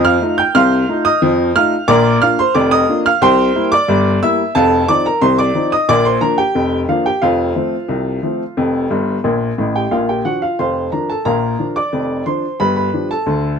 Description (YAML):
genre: ragtime piano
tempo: 90 BPM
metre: 2/4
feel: straight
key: Bb major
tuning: A4 = 438 Hz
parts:
  - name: warm upright piano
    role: solo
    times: 0.0-13.6 s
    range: F1 to G6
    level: -13 LUFS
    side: equal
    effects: none
room: light reverb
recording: close, detailed microphones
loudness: -13 LUFS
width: side -6 dB against mid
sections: 0.0-9.9 A section; 9.9-13.6 B section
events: upright piano fill 8.9-9.9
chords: 0.0 F7/C; 1.9 Bb; 3.2 C7; 4.5 F7; 5.9 Bb; 7.2 F; 9.9 Bb; 12.6 G7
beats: | 0.55 1.22 | 1.88 2.54 | 3.21 3.88 | 4.54 5.21 | 5.88 6.54 | 7.22 7.90 | 8.57 9.25 | 9.92 10.59 | 11.26 11.92 | 12.59 13.26